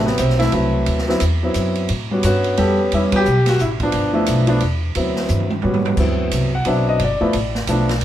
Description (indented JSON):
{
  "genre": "jazz piano trio",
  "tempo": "176 BPM",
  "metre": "3/4",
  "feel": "swing 63% on 8ths",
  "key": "D mixolydian",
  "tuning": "A4 = 440 Hz",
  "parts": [
    { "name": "warm concert grand piano", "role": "melody", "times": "0.0-8.0 s", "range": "C3 to F#5", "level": "-18 LUFS", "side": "equal", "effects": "plate reverb" },
    { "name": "upright bass", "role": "bass", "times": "0.0-8.0 s", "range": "G1 to A2", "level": "-20 LUFS", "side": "equal", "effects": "none" },
    { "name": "open jazz drum kit", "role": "drums", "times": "0.1-8.0 s", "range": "crash cymbal, hi-hat, kick drum, ride cymbal, snare drum, toms", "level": "-25 LUFS", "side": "right 4 dB", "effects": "none" }
  ],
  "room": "wet club reverb, RT60 0.7 s",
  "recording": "heard from further back in the room",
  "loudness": "-16 LUFS",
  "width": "side -12 dB against mid",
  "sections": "0.0-6.0 A section; 6.0-8.0 B section",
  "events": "band accent 3.1; drum fill 5.3-6.0; grand piano solo 6.0-8.0",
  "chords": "0.0 D13; 1.9 A13; 3.9 G13; 5.0 D13; 5.6 A13; 6.0 D13; 7.0 G9"
}